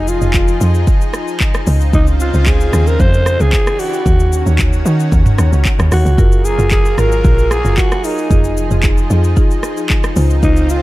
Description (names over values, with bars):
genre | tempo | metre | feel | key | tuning
amapiano | 113 BPM | 4/4 | straight | unclear | A4 = 440 Hz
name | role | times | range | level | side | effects
breathy alto saxophone | melody | 0.0-10.8 s | Eb4 to C5 | -19 LUFS | equal | tape echo
lush unison pad | sustained chords | 0.0-10.8 s | Db3 to Bb4 | -23 LUFS | left 1 dB | chorus, sidechain pumping
deep log drum bass | bass | 0.0-10.8 s | F1 to Eb3 | -13 LUFS | equal | none
afro-pop drum kit | drums | 0.1-10.8 s | handclaps, hi-hat, kick drum, rim click, shaker, toms | -14 LUFS | equal | none
marimba with medium mallets | stabs | 6.2-10.8 s | Eb4 to C5 | -22 LUFS | equal | none
room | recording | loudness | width
little or no reverb | dark, warm production | -11 LUFS | side -17 dB against mid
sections
0.0-10.8 A section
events
none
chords
0.0 Fm7; 1.7 Dbmaj9; 3.5 Em7; 4.1 Ebm7; 6.2 Gbmaj9; 8.3 Fm7; 10.2 Dbmaj9